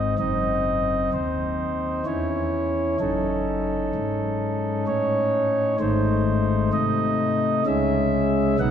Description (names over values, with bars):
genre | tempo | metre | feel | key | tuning
classical, chorale-style piece for pipe organ | 64 BPM | 3/4 | rubato | C# minor | A4 = 440 Hz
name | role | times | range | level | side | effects
chamber organ, principal | solo | 0.0-8.7 s | Gb1 to F#5 | -21 LUFS | equal | none
room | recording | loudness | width
wet church reverb, RT60 3.0 s | none | -21 LUFS | side -8 dB against mid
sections
0.0-8.7 A section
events
none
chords
0.2 Cdim/Gb; 2.1 C#m/E; 3.0 D#m7b5/F#; 5.8 G#; 7.7 C#m